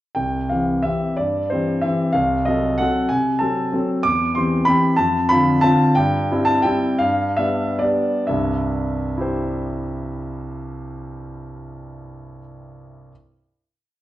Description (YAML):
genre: classical, piano waltz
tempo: 122-204 BPM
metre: 3/4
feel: rubato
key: C major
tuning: A4 = 442 Hz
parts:
  - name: warm concert grand piano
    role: solo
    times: 0.1-13.1 s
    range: C2 to D6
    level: -18 LUFS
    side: equal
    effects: none
room: wet recital hall reverb, RT60 1.4 s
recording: worn, warbling old tape, cassette tape, warbly pitch drift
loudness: -17 LUFS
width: side -14 dB against mid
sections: 0.2-8.3 A section; 8.3-10.9 final chord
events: slowing down 5.5-8.3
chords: 0.2 C; 2.2 Cdim7; 4.0 C/E; 5.0 Dm7/F; 6.0 C/G; 7.0 G7; 8.3 C